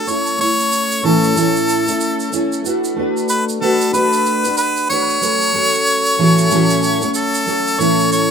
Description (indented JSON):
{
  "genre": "acoustic pop",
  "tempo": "93 BPM",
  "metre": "4/4",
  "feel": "swing 60% on 16ths",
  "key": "A major",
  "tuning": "A4 = 445 Hz",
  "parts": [
    { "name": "bright harmonica", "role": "melody", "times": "0.0-8.3 s", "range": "A4 to C#5", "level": "-17 LUFS", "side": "left 1 dB", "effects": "tape echo" },
    { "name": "fingerpicked steel-string acoustic guitar", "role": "accompaniment", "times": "0.0-8.3 s", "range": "A2 to B4", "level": "-17 LUFS", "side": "equal", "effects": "double-tracked left and right, plate reverb" },
    { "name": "tube shaker", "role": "percussion", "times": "0.1-8.3 s", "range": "none", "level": "-26 LUFS", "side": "right 6 dB", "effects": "none" }
  ],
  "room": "moderate small room reverb, RT60 0.5 s",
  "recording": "rough home demo mix",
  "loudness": "-13 LUFS",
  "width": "side -6 dB against mid",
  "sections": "0.0-7.8 A section",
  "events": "none",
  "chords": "0.1 A; 2.7 Bm/A; 5.2 F#m7; 7.8 A",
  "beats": "| 0.08 0.72 1.36 2.01 | 2.65 3.29 3.94 4.58 | 5.22 5.87 6.51 7.15 | 7.80"
}